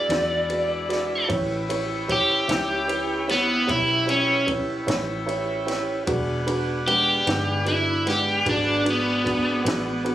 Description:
slow blues; 50 BPM (dotted quarters); 12/8; straight; A4 = 440 Hz
crunchy overdriven guitar; melody; 0.0-10.1 s; B3 to D5; -21 LUFS; equal
tonewheel organ; sustained chords; 0.0-10.1 s; G#3 to F#5; -30 LUFS; left 1 dB; slow rotary speaker
vintage muted fingered electric bass; bass; 0.0-10.1 s; E1 to E2; -32 LUFS; equal
dark upright piano; accompaniment; 0.1-10.1 s; G#3 to G5; -28 LUFS; right 3 dB
compact cocktail drum kit; drums; 0.1-10.1 s; kick drum, ride cymbal, snare drum; -32 LUFS; left 1 dB
light reverb; recorded on a phone in the room, club ambience; -20 LUFS; side -12 dB against mid
0.0-10.1 A section
overdriven electric guitar solo 0.0-10.1; upright piano fill 4.9-6.1
0.0 E9; 1.3 A9; 6.1 E9

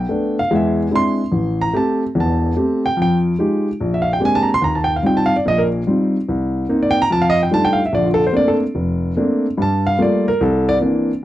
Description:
solo jazz; 146 BPM; 4/4; swing 67% on 8ths; F major; A4 = 440 Hz
warm grand piano; solo; 0.0-11.1 s; E1 to B#5; -15 LUFS; equal
light reverb; dry, close 1970s-style studio recording; -15 LUFS; side -14 dB against mid
0.0-11.2 A section
grand piano solo 0.0-11.2
0.0 G9; 0.5 Eaug7; 1.3 Am7; 3.0 Fm9; 3.8 Bb13; 4.6 Eb69; 6.3 Cm7; 7.1 F13; 7.9 Bbmaj9; 9.6 Gm9; 10.4 C9

